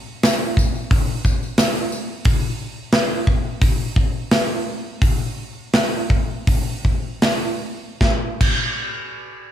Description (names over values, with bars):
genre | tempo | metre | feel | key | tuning
rock | 75-89 BPM | 4/4 | straight | none | none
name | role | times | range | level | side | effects
big rock drum kit | drums | 0.2-8.6 s | crash cymbal, hi-hat, kick drum, snare drum | -18 LUFS | equal | none
tambourine | percussion | 0.2-2.1 s | none | -32 LUFS | left 3 dB | none
room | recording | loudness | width
little or no reverb | small room ambience | -18 LUFS | side -10 dB against mid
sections
0.0-8.0 A section; 8.0-9.5 B section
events
slowing down 2.3-8.0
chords
none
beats
0.24 0.91 1.59 | 2.26 2.94 3.62 4.32 | 5.02 5.74 6.47 7.23 | 8.02